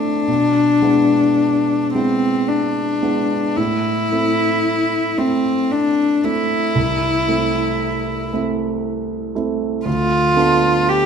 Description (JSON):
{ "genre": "classical, romantic duo for cello and grand piano", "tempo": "54-60 BPM", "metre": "3/4", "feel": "rubato", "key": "A minor", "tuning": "A4 = 440 Hz", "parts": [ { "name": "warm cello", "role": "melody", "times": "0.0-11.1 s", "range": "C4 to G4", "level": "-17 LUFS", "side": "left 2 dB", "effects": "none" }, { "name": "warm concert grand piano", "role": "accompaniment", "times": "0.0-11.1 s", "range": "C2 to E4", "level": "-20 LUFS", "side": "right 4 dB", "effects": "none" } ], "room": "wet recital hall reverb, RT60 1.6 s", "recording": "none", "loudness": "-15 LUFS", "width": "side -7 dB against mid", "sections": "0.0-11.1 A section", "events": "none", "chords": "0.3 E7/B; 3.6 Am; 6.8 Am/C; 9.9 Bm7b5/D", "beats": "| 0.28 1.39 2.49 | 3.58 4.65 5.72 | 6.76 7.80 8.85 | 9.87 10.88" }